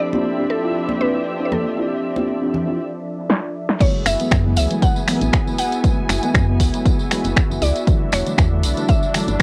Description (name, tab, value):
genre	deep house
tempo	118 BPM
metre	4/4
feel	swing 54% on 16ths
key	unclear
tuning	A4 = 440 Hz
part	mallet-like synth pluck	melody	0.0-9.4 s	A4 to F#5	-28 LUFS	equal	chorus, cassette tape
part	warm analog pad	sustained chords	0.0-9.4 s	F3 to E5	-30 LUFS	equal	lush chorus, sidechain pumping
part	deep mellow chord stab	stabs	0.0-9.3 s	D3 to G4	-27 LUFS	equal	chorus, sidechain pumping, analog delay
part	muted studio string section	texture	0.0-9.4 s	F3 to B5	-31 LUFS	equal	sidechain pumping
part	punchy analog drum machine	drums	0.1-9.4 s	crash cymbal, finger snaps, hi-hat, snare drum	-24 LUFS	equal	low-pass filter on hats, cassette tape, low-pass filter on snare, low-pass filter on cymbals
part	congas	percussion	0.1-2.6 s	none	-29 LUFS	equal	none
part	electronic kick drum	drums	3.8-9.4 s	none	-20 LUFS	equal	cassette tape
part	tambourine	percussion	3.8-9.4 s	none	-34 LUFS	equal	none
part	woody FM bass	bass	4.1-9.4 s	E1 to F#2	-22 LUFS	equal	sidechain pumping
room	light reverb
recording	home recording on cassette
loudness	-19 LUFS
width	mono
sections	0.0-3.8 A section; 3.8-9.4 B section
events	drum fill 3.3-3.8; drop 3.8-9.4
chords	0.0 Dm11; 3.8 F#m11; 7.9 Em11